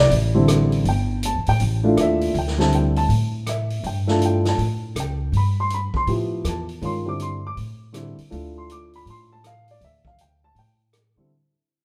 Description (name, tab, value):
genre	modal jazz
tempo	161 BPM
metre	4/4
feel	swing 64% on 8ths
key	D dorian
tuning	A4 = 440 Hz
part	dark baby grand piano	accompaniment	0.0-11.3 s	D3 to D6	-24 LUFS	equal	none
part	upright bass	bass	0.0-11.3 s	G1 to A2	-25 LUFS	equal	none
part	vintage drum kit	drums	0.1-11.0 s	hi-hat, kick drum, rim click, snare drum	-32 LUFS	equal	none
room	moderate stone room reverb, RT60 1.2 s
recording	band playing live in one room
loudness	-21 LUFS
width	mono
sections	0.0-11.3 A section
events	fade-out 0.0-11.3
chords	0.0 D9sus4